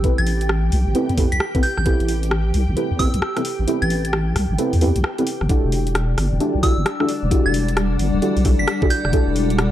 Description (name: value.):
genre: UK garage, two-step garage.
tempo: 132 BPM.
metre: 4/4.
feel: swing 64% on 16ths.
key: E minor.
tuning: A4 = 439 Hz.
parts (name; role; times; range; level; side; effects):
ethereal airy pad; sustained chords; 0.0-9.7 s; D4 to G5; -29 LUFS; equal; ensemble chorus, built-in reverb, phaser, sidechain pumping.
deep mellow chord stab; stabs; 0.0-9.7 s; C4 to B4; -23 LUFS; right 1 dB; chorus, phaser.
deep soft wobble bass; bass; 0.0-9.7 s; E1 to E2; -20 LUFS; equal; chorus.
electronic kick drum; drums; 0.0-9.2 s; none; -18 LUFS; equal; none.
garage drum kit; drums; 0.0-9.7 s; hi-hat, rim click; -26 LUFS; left 1 dB; none.
soft synth bell; melody; 0.2-9.1 s; E6 to B6; -26 LUFS; right 2 dB; chorus, phaser, tape echo.
granular cloud pad; texture; 6.5-9.7 s; G3 to F#5; -25 LUFS; left 3 dB; built-in reverb, sidechain pumping.
room: light reverb, digital ambience.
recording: dry, gritty hardware recording.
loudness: -17 LUFS.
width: side -12 dB against mid.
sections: 0.0-5.5 A section; 5.5-9.7 B section.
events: kick drops out 3.7-5.5; drop 5.5-9.7.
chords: 0.0 Am9; 5.5 Em11.